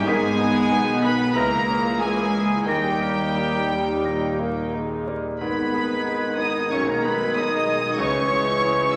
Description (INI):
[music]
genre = classical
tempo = 91 BPM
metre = 4/4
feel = uneven beats, rubato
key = G# minor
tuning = A4 = 440 Hz
[part]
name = clear concert grand piano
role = melody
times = 0.0-9.0 s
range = B1 to C#5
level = -32 LUFS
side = equal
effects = none
[part]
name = clear studio violin section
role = melody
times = 0.0-9.0 s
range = G5 to E6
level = -31 LUFS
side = equal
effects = none
[part]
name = clear clarinet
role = second line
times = 0.0-9.0 s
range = G4 to E5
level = -37 LUFS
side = equal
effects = none
[part]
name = warm studio violin section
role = second line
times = 0.0-9.0 s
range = G5 to E6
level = -34 LUFS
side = equal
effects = none
[part]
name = warm studio viola section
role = accompaniment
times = 0.0-9.0 s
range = G#3 to E4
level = -32 LUFS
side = equal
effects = none
[part]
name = mellow French horn section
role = sustained chords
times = 0.0-9.0 s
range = G3 to E4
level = -32 LUFS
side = equal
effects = none
[part]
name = mellow trombone section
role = sustained chords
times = 0.0-9.0 s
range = D#3 to B3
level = -35 LUFS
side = equal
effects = none
[part]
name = warm trumpet section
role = stabs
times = 0.0-9.0 s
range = G4 to E5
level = -31 LUFS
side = equal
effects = none
[part]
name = dark studio cello section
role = bass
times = 0.0-9.0 s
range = G3 to E4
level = -34 LUFS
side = equal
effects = none
[part]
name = rich studio double bass section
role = bass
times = 0.0-9.0 s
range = G#1 to D#2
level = -38 LUFS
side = equal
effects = none
[part]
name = warm tuba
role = bass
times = 0.0-9.0 s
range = G#1 to D#2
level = -36 LUFS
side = equal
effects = none
[part]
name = concert flute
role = second line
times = 0.1-9.0 s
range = G#6 to B6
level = -34 LUFS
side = equal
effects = none
[part]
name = mellow bassoon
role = accompaniment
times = 0.1-9.0 s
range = D#3 to A#3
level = -30 LUFS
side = equal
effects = none
[sound]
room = wet recital hall reverb, RT60 1.5 s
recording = vinyl crackle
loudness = -22 LUFS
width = mono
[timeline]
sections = 0.0-9.0 A section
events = none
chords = 0.1 G#m; 1.4 A#dim/C#; 2.7 D#; 5.4 G#m; 6.7 G#m/B; 8.0 C#m